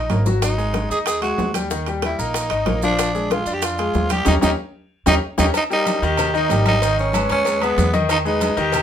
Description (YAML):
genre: latin, salsa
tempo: 188 BPM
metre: 4/4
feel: straight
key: unclear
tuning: A4 = 440 Hz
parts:
  - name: growling tenor saxophone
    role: melody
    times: 0.0-8.8 s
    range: B3 to G#4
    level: -21 LUFS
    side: right 2 dB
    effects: none
  - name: bright concert grand piano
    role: accompaniment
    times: 0.0-8.8 s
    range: D#3 to D#5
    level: -22 LUFS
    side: left 3 dB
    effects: none
  - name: upright bass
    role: bass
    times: 0.0-8.8 s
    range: G#1 to E#2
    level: -23 LUFS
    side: right 1 dB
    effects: none
  - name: congas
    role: percussion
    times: 0.1-8.8 s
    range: none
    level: -28 LUFS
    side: left 1 dB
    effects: none
  - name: maracas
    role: percussion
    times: 0.1-8.8 s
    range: none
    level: -32 LUFS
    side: right 6 dB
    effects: none
  - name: timbales and agogo bells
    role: percussion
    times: 0.1-8.8 s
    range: none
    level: -27 LUFS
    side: right 4 dB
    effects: none
  - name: bongos and cowbell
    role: percussion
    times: 0.3-8.8 s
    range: none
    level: -28 LUFS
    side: left 5 dB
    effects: none
room: moderate studio ambience, RT60 0.5 s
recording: minimal, uncompressed stereo recording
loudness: -17 LUFS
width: side -9 dB against mid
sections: 0.0-5.5 A section; 5.5-8.8 B section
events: drum fill 0.0-0.4, 4.9-5.5; band accent 4.3-5.5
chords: 0.4 G#5; 1.7 D#; 3.0 A#7; 4.3 D#7; 5.5 D#; 6.8 G#m; 8.1 Emaj7